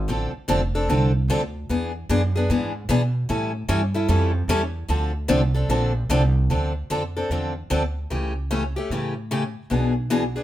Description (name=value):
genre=acoustic string swing (jazz manouche)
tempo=150 BPM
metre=4/4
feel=swing 63% on 8ths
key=D minor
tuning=A4 = 440 Hz
part: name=upright bass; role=bass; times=0.0-10.4 s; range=F1 to B2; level=-23 LUFS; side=right 1 dB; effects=none
part: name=picked steel-string acoustic guitar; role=accompaniment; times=0.1-10.4 s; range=B2 to A4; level=-23 LUFS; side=left 2 dB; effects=none
room=moderate studio reverb, RT60 0.7 s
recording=band playing live in one room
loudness=-20 LUFS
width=side -13 dB against mid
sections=0.0-6.5 A section; 6.5-10.4 B section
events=none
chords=0.1 Dm7; 1.7 E7; 3.3 A7; 4.9 Dm7; 8.1 A7/C#; 9.7 E7/B